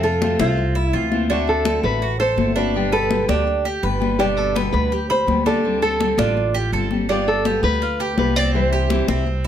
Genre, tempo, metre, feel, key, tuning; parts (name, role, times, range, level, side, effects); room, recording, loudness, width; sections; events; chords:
latin, Cuban son and guajira; 166 BPM; 4/4; straight; A4 = 440 Hz
nylon-string guitar; melody; 0.0-9.5 s; F4 to D5; -22 LUFS; equal
fingerpicked steel-string acoustic guitar; accompaniment; 0.0-9.3 s; B2 to G4; -25 LUFS; left 5 dB
Cuban tres; arpeggios; 0.0-9.5 s; C4 to B5; -24 LUFS; right 5 dB
upright bass; bass; 0.0-9.5 s; G1 to F2; -23 LUFS; right 1 dB
congas; percussion; 0.0-9.5 s; -25 LUFS; left 5 dB
light reverb; -17 LUFS; side -10 dB against mid
0.0-9.5 A section
0.0 Fmaj7; 1.3 D7; 2.7 G; 5.6 D7sus4; 7.1 G7; 8.5 C